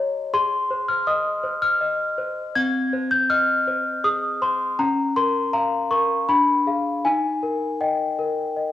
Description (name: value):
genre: classical, lullaby for celesta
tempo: 80 BPM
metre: 3/4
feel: straight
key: Ab major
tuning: A4 = 437 Hz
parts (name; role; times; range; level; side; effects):
- celesta; solo; 0.0-8.7 s; C4 to Ab6; -20 LUFS; left 2 dB; none
room: moderate lush hall reverb, RT60 2.1 s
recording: home recording on cassette, studio ambience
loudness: -20 LUFS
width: side -12 dB against mid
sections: 0.0-8.7 A section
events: none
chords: 0.3 Ab; 2.6 Ab/C; 4.8 Bbm/Db; 6.3 Ddim7; 7.0 Eb